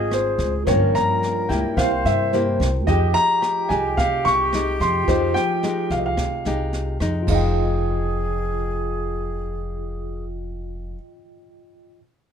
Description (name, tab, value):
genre	bossa nova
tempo	109 BPM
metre	4/4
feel	straight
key	F minor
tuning	A4 = 440 Hz
part	warm concert grand piano	melody	0.0-11.0 s	C5 to Db6	-22 LUFS	equal	none
part	reedy concert flute	second line	0.0-10.2 s	G4 to C5	-29 LUFS	equal	none
part	nylon-string guitar	accompaniment	0.0-11.0 s	G2 to G4	-27 LUFS	left 3 dB	none
part	tine electric piano	accompaniment	0.0-12.0 s	E4 to G6	-30 LUFS	right 3 dB	medium stereo tremolo
part	upright bass	bass	0.0-10.9 s	F1 to G2	-25 LUFS	equal	none
part	jazz brush drum kit	drums	0.1-7.4 s	crash cymbal, kick drum, rim click, snare drum	-28 LUFS	equal	none
room	light reverb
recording	minimal, uncompressed stereo recording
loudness	-19 LUFS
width	side -8 dB against mid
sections	0.0-7.3 A section; 7.3-9.5 B section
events	none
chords	0.0 Dbmaj9#11; 0.7 Gm7b5; 1.8 C7; 2.9 Fm9